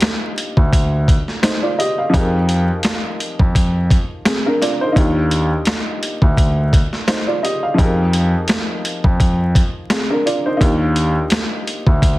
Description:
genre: hip hop, boom-bap hip-hop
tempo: 85 BPM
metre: 4/4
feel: swing 56% on 16ths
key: F dorian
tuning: A4 = 440 Hz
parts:
  - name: dark upright piano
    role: accompaniment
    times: 0.0-12.2 s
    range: F3 to F5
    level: -21 LUFS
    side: equal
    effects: cassette tape, high-pass filter, low-pass filter
  - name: boom bap sampler-style drum kit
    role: drums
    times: 0.0-12.2 s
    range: hi-hat, kick drum, snare drum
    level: -16 LUFS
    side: equal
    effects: none
  - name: dark grand piano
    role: bass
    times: 0.6-12.2 s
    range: D2 to F2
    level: -17 LUFS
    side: equal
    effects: none
room: little or no reverb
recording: dense, heavily limited modern master, vinyl crackle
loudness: -14 LUFS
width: side -18 dB against mid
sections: 0.0-12.2 A section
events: none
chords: 0.0 Ebmaj9; 2.1 Fm11; 5.0 Ebmaj9; 7.8 Fm11; 10.6 Ebmaj9

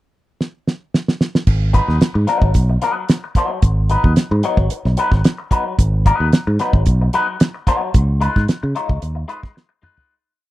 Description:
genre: funk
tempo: 111 BPM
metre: 4/4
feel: straight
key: G# dorian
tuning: A4 = 441 Hz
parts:
  - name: damped 70s drum kit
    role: drums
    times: 0.4-10.1 s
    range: crash cymbal, hi-hat, kick drum, snare drum, toms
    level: -15 LUFS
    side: right 1 dB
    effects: none
  - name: fingered electric bass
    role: bass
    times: 1.5-9.2 s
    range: G#1 to C#3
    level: -16 LUFS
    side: equal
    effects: none
  - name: clean electric guitar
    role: accompaniment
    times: 1.7-10.1 s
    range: F#3 to C#5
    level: -21 LUFS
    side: left 3 dB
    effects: wah, spring reverb
room: light reverb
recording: dry, close 1970s-style studio recording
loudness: -14 LUFS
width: side -16 dB against mid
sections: 0.0-1.5 pickup bar; 1.5-10.1 breakdown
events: drum fill 0.4-1.5, 9.6-10.1; fade-out 7.9-10.1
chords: 0.0 N.C.; 1.5 G#m7; 7.9 C#9

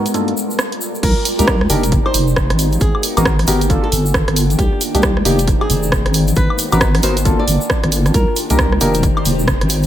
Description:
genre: UK garage, two-step garage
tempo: 135 BPM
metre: 4/4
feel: swing 62% on 16ths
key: unclear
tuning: A4 = 442 Hz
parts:
  - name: soft string machine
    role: sustained chords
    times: 0.0-9.9 s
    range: G3 to G5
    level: -26 LUFS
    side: equal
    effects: ensemble chorus, sidechain pumping
  - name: percussive organ stab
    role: stabs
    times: 0.0-8.9 s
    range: G2 to Bb4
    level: -22 LUFS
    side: equal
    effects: chorus, analog delay
  - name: warbly tape-like pad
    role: texture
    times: 0.0-9.9 s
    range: Eb3 to F4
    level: -25 LUFS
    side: left 1 dB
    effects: chorus, built-in reverb, phaser, sidechain pumping
  - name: house drum kit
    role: drums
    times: 0.1-9.9 s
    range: crash cymbal, hi-hat, rim click, woodblock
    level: -20 LUFS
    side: right 1 dB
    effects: overdrive
  - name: egg shaker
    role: percussion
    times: 0.1-9.9 s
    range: none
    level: -27 LUFS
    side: left 2 dB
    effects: none
  - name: flamenco guitar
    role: melody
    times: 1.0-9.9 s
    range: G4 to D5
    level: -23 LUFS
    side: equal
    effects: analog delay
  - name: deep soft wobble bass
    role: bass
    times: 1.0-9.9 s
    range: F1 to C2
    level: -16 LUFS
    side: equal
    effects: chorus
  - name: electronic kick drum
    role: drums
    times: 1.0-9.6 s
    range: none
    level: -18 LUFS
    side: equal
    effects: overdrive
room: light reverb, digital ambience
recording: echo-heavy mix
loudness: -13 LUFS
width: side -11 dB against mid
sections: 0.0-1.0 A section; 1.0-9.9 B section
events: filter sweep on drum 0.0-1.0; drop 1.0-9.9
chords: 0.1 Gm9; 1.0 Cm9; 1.9 Fm9; 2.6 Abm9; 3.7 Gm9; 4.6 Cm9; 5.5 Fm9; 6.1 Abm9; 7.3 Gm9; 8.1 Cm9; 9.0 Fm9

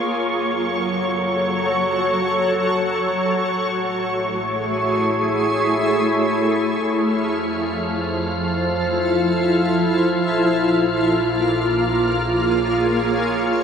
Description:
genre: ambient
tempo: free time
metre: none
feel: none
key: unclear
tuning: A4 = 440 Hz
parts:
  - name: shimmering ambient pad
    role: sustained chords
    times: 0.0-13.6 s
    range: F3 to Db5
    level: -18 LUFS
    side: equal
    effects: chorus, built-in reverb
  - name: warm studio double bass section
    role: bass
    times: 0.0-13.6 s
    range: Gb1 to F2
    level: -32 LUFS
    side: equal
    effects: none
  - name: wind-like tuned noise texture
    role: texture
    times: 0.0-13.6 s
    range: Db6 to F6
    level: -26 LUFS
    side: equal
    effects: built-in reverb
room: wet cathedral reverb, RT60 6.4 s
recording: in a vast, echoing space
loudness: -17 LUFS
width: side -7 dB against mid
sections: 0.0-13.6 A section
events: fade-in on double bass section 0.0-13.6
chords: 0.0 Gbm; 3.4 Amaj7; 6.8 Fmaj7; 10.3 Bbm7

